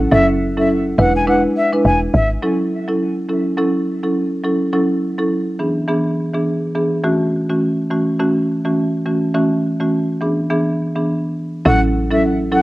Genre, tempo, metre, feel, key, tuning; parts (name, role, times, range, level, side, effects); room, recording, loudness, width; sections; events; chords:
afrobeats; 104 BPM; 4/4; swing 58% on 16ths; A major; A4 = 439 Hz
marimba with medium mallets; accompaniment; 0.0-12.6 s; E3 to B4; -16 LUFS; equal; cassette tape
woody log drum bass; bass; 0.0-2.4, 11.7-12.6 s; E1 to A1; -18 LUFS; equal
jazz flute; melody; 0.1-2.3, 11.7-12.6 s; E5 to G#5; -19 LUFS; left 1 dB; cassette tape, tape echo
moderate spring reverb, RT60 1.5 s; home recording on cassette; -15 LUFS; side -18 dB against mid
0.0-2.4 A section; 2.4-11.7 B section
0.1 F#m7; 1.0 E7; 2.4 F#m7; 5.6 E7; 7.0 A6; 10.2 E7; 11.7 A6